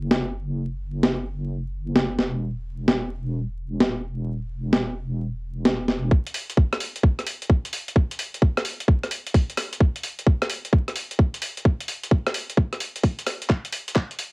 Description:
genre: UK garage, two-step garage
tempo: 130 BPM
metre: 4/4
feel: swing 66% on 16ths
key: unclear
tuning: A4 = 438 Hz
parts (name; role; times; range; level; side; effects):
- deep soft wobble bass; bass; 0.0-6.1 s; E1 to F#1; -28 LUFS; equal; chorus
- breakbeat sampler-style drum kit; drums; 0.1-14.3 s; handclaps, hi-hat, rim click, snare drum; -24 LUFS; equal; high-pass filter on snare, cassette tape, high-pass filter on hats
- electronic kick drum; drums; 6.1-14.1 s; none; -17 LUFS; equal; cassette tape
room: light reverb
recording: home recording on cassette, vinyl crackle, high-pass filter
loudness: -22 LUFS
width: side -32 dB against mid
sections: 0.0-6.1 A section; 6.1-14.3 B section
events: build-up 6.1-14.3; filter sweep 6.1-14.3; drum fill 13.5-14.3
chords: none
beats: 0.11 | 0.57 1.03 1.50 1.96 | 2.42 2.88 3.34 3.80 | 4.27 4.73 5.19 5.65 | 6.11 6.57 7.04 7.50 | 7.96 8.42 8.88 9.34 | 9.80 10.27 10.73 11.19 | 11.65 12.11 12.57 13.04 | 13.50 13.96

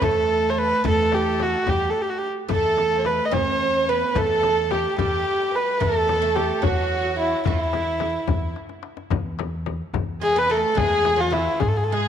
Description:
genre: Persian modal ensemble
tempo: 72 BPM (dotted quarters)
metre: 6/8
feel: straight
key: E avaz esfahan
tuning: A4 = 439 Hz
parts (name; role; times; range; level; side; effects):
- warm kamancheh; melody; 0.0-12.1 s; E4 to D#5; -21 LUFS; equal; none
- oud; second line; 0.0-12.1 s; E3 to C4+50c; -30 LUFS; right 8 dB; none
- warm studio violin section; second line; 0.0-12.1 s; E4 to C5+50c; -29 LUFS; right 2 dB; tape echo
- upright bass; bass; 0.0-12.1 s; E2 to G#2; -28 LUFS; equal; none
- frame drum; percussion; 0.0-11.7 s; none; -30 LUFS; left 8 dB; none
- tombak; percussion; 0.0-11.7 s; none; -30 LUFS; left 5 dB; none
room: moderate echo chamber reverb, RT60 2.1 s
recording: 1960s-style stereo with parts hard left and right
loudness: -19 LUFS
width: side -9 dB against mid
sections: 0.0-9.1 A section; 9.1-12.1 B section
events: drum fill 8.6-9.1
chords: none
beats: 0.02 | 0.85 1.67 | 2.50 3.33 | 4.16 4.99 | 5.81 6.64 | 7.47 8.30 | 9.12 9.95 | 10.78 11.61

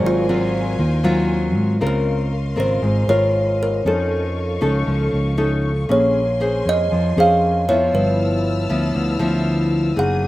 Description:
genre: bossa nova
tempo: 118 BPM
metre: 4/4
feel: straight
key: unclear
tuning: A4 = 440 Hz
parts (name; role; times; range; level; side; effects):
- kalimba; melody; 0.0-10.3 s; F4 to Gb5; -21 LUFS; right 1 dB; none
- nylon-string guitar; accompaniment; 0.0-10.3 s; G2 to C5; -20 LUFS; left 1 dB; none
- warm studio string section; sustained chords; 0.0-10.3 s; Gb4 to F6; -32 LUFS; left 3 dB; none
- fingered electric bass; bass; 0.0-10.3 s; Gb1 to Ab2; -22 LUFS; equal; none
room: little or no reverb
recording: recorded outdoors, with no room sound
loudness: -16 LUFS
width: side -16 dB against mid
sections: 0.0-1.8 A section; 1.8-10.3 B section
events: kalimba solo 0.0-1.8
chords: 0.0 Ab13; 1.8 Dbmaj13; 3.8 Faug7; 5.9 Bbm9; 7.9 G13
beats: 0.28 0.79 1.30 | 1.81 2.32 2.83 3.34 | 3.85 4.36 4.87 5.38 | 5.89 6.40 6.91 7.42 | 7.92 8.44 8.95 9.46 | 9.96

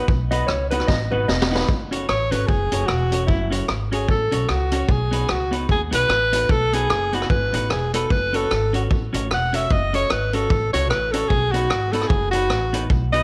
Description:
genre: ska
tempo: 150 BPM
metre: 4/4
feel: swing 58% on 8ths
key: F# dorian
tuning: A4 = 440 Hz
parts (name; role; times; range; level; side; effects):
- mellow electric guitar; melody; 0.0-1.7 s; B4 to D#5; -28 LUFS; equal; none
- clean electric guitar; accompaniment; 0.0-13.2 s; B3 to C#5; -31 LUFS; equal; tape echo
- warm upright piano; stabs; 0.0-1.6 s; D#4 to B4; -33 LUFS; equal; none
- upright bass; bass; 0.0-13.2 s; E1 to D#2; -27 LUFS; equal; none
- street-band drum kit; drums; 0.1-13.2 s; hi-hat, kick drum, rim click, snare drum; -26 LUFS; equal; none
- breathy alto saxophone; melody; 2.1-13.2 s; E4 to F#5; -24 LUFS; equal; none
room: moderate plate reverb, RT60 1.9 s, studio reverb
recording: none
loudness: -21 LUFS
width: mono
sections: 0.0-1.7 A section; 1.7-13.2 A section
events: clean electric guitar solo 0.0-1.7; drum fill 0.9-1.7; alto saxophone solo 1.7-13.2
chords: 0.0 B; 1.7 F#m; 4.9 B; 8.1 F#m; 11.3 B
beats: | 0.09 0.49 0.89 1.29 | 1.69 2.09 2.49 2.89 | 3.29 3.69 4.09 4.49 | 4.89 5.29 5.69 6.09 | 6.50 6.90 7.30 7.70 | 8.10 8.50 8.90 9.30 | 9.70 10.10 10.50 10.90 | 11.30 11.70 12.10 12.50 | 12.90

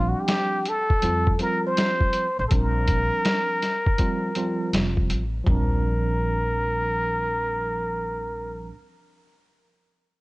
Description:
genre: hip hop, jazz-hop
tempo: 81 BPM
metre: 4/4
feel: swing 65% on 16ths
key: Bb major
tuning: A4 = 439 Hz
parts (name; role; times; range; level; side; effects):
- trumpet with plunger mute; melody; 0.0-8.7 s; Gb4 to C5; -25 LUFS; equal; none
- tine electric piano; accompaniment; 0.0-8.7 s; F3 to F4; -30 LUFS; right 2 dB; medium stereo tremolo
- upright bass; bass; 0.0-8.7 s; F1 to F2; -26 LUFS; equal; none
- lo-fi sampler-style drum kit; drums; 0.3-5.7 s; hi-hat, kick drum, snare drum, toms; -23 LUFS; equal; none
room: light reverb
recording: worn, warbling old tape, cassette tape, warbly pitch drift, nothing above 10.6 kHz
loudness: -21 LUFS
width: side -21 dB against mid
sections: 0.0-5.5 A section; 5.5-8.4 B section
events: none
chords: 0.0 Bb69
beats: 0.28 1.03 1.77 | 2.51 3.25 3.99 4.73 | 5.47 6.21 6.95 7.69

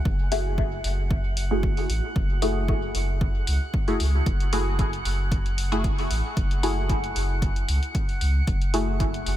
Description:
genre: dub techno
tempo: 114 BPM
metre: 4/4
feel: swing 53% on 16ths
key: F# minor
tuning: A4 = 441 Hz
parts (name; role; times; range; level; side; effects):
- drifting glass-harmonics texture; texture; 0.0-9.4 s; F#5; -36 LUFS; right 3 dB; chorus, built-in reverb, sidechain pumping
- pure sine sub bass; bass; 0.1-9.4 s; F#1 to C#2; -26 LUFS; equal; sidechain pumping
- electronic kick drum; drums; 0.1-9.1 s; none; -26 LUFS; equal; none
- filtered dub chord stab; stabs; 0.3-9.4 s; A3 to G#4; -29 LUFS; left 1 dB; chorus, phaser, sidechain pumping, dub echo
- electronic hi-hat; drums; 0.3-9.4 s; none; -34 LUFS; left 2 dB; none
room: light reverb, digital ambience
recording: none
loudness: -22 LUFS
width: side -13 dB against mid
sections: 0.0-9.4 A section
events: none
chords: 0.0 F#m9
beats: | 0.05 0.58 1.11 1.63 | 2.16 2.69 3.21 3.74 | 4.26 4.79 5.32 5.84 | 6.37 6.90 7.42 7.95 | 8.47 9.00

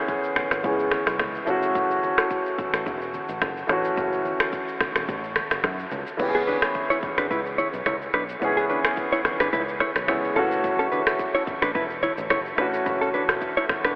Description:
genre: afrobeats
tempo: 108 BPM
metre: 4/4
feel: swing 55% on 16ths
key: F# minor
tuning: A4 = 440 Hz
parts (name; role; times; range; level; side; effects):
- warm grand piano; accompaniment; 0.0-14.0 s; E3 to G#4; -25 LUFS; equal; lush chorus
- afro-pop drum kit; drums; 0.1-14.0 s; crash cymbal, finger snaps, kick drum, rim click, shaker, toms; -27 LUFS; equal; none
- congas; percussion; 0.4-13.8 s; none; -41 LUFS; equal; none
- fingered electric bass; bass; 0.5-13.9 s; E1 to F#2; -35 LUFS; equal; none
- mellow electric guitar; riff; 6.3-13.9 s; B3 to C#5; -25 LUFS; equal; analog delay
room: wet huge ambient reverb, RT60 8.1 s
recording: dreamy mix soaked in reverb, telephone sound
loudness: -21 LUFS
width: side -30 dB against mid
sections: 0.0-6.2 A section; 6.2-14.0 B section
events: none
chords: 0.0 C#m7; 1.5 F#m7; 6.2 C#m7; 10.4 F#m7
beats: 0.09 0.64 1.20 | 1.75 2.31 2.86 3.42 | 3.97 4.53 5.08 5.64 | 6.20 6.75 7.31 7.86 | 8.42 8.97 9.53 10.09 | 10.64 11.20 11.75 12.31 | 12.86 13.42

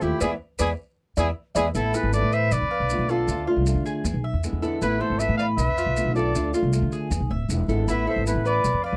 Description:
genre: latin, Cuban son and guajira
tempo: 156 BPM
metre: 4/4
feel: straight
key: A harmonic minor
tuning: A4 = 440 Hz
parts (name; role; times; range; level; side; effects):
- warm trumpet; melody; 0.0-9.0 s; G4 to F5; -29 LUFS; equal; none
- breathy bright jazz flute; second line; 0.0-9.0 s; E4 to D5; -36 LUFS; equal; none
- nylon-string guitar; accompaniment; 0.0-8.7 s; D3 to F4; -30 LUFS; equal; none
- Cuban tres; arpeggios; 0.0-9.0 s; E4 to F5; -32 LUFS; equal; none
- upright bass; bass; 0.0-9.0 s; D1 to D3; -27 LUFS; equal; none
- maracas; percussion; 0.0-8.8 s; none; -40 LUFS; equal; none
room: little or no reverb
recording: dry, close 1970s-style studio recording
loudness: -24 LUFS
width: mono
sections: 0.0-1.7 A section; 1.7-9.0 B section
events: band accent 0.2-1.7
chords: 0.2 E7; 1.7 Asus2; 2.5 Bm7b5; 3.3 Dm; 4.0 E7; 4.8 Asus2; 5.6 Bm7b5; 6.3 Dm; 7.1 E7; 7.9 Asus2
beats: | 0.21 0.59 0.98 1.36 | 1.75 2.13 2.52 2.90 | 3.28 3.67 4.05 4.43 | 4.82 5.20 5.58 5.96 | 6.35 6.73 7.12 7.50 | 7.88 8.27 8.65

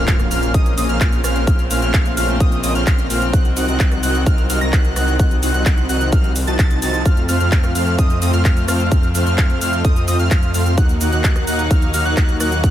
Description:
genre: EDM, festival progressive house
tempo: 129 BPM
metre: 4/4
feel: straight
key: Bb harmonic minor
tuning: A4 = 440 Hz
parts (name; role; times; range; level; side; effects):
- rich chamber string section; sustained chords; 0.0-12.7 s; Db3 to Eb4; -27 LUFS; left 1 dB; sidechain pumping
- plucky unison lead; arpeggios; 0.0-12.7 s; Eb6 to Bb6; -24 LUFS; equal; sidechain pumping, ping-pong delay
- dense compressed supersaw; riff; 0.0-12.7 s; A3 to Bb5; -23 LUFS; equal; sidechain pumping, ping-pong delay
- wide detuned saw bass; bass; 0.0-12.7 s; Bb1 to F2; -20 LUFS; equal; chorus, sidechain pumping
- impact; sound effects; 0.0-1.5 s; none; -30 LUFS; equal; none
- big-room dance drum kit; drums; 0.1-12.7 s; handclaps, hi-hat, rim click, shaker; -25 LUFS; equal; none
- electronic kick drum; drums; 0.1-12.7 s; none; -15 LUFS; equal; none
room: digital ambience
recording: none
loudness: -14 LUFS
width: side -12 dB against mid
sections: 0.0-12.7 A section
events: impact 0.0-1.5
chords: 0.0 Bbmadd9; 3.3 Cdim; 7.1 F; 10.8 Ebm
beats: 0.08 0.54 1.01 | 1.47 1.94 2.40 2.87 | 3.33 3.80 4.26 4.73 | 5.20 5.66 6.12 6.59 | 7.05 7.52 7.99 8.45 | 8.92 9.38 9.85 10.31 | 10.78 11.24 11.71 12.17 | 12.64

